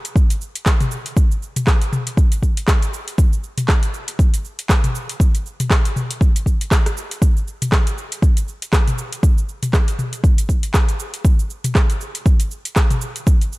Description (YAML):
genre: house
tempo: 119 BPM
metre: 4/4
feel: swing 57% on 16ths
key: none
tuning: none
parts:
  - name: afro-pop drum kit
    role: drums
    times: 0.0-13.6 s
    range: handclaps, hi-hat, rim click, shaker, toms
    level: -22 LUFS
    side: equal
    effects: studio reverb
  - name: electronic kick drum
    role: drums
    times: 0.2-13.4 s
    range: none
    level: -15 LUFS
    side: equal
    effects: studio reverb
room: little or no reverb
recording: dark, warm production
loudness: -16 LUFS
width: side -21 dB against mid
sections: 0.0-13.6 A section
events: none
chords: none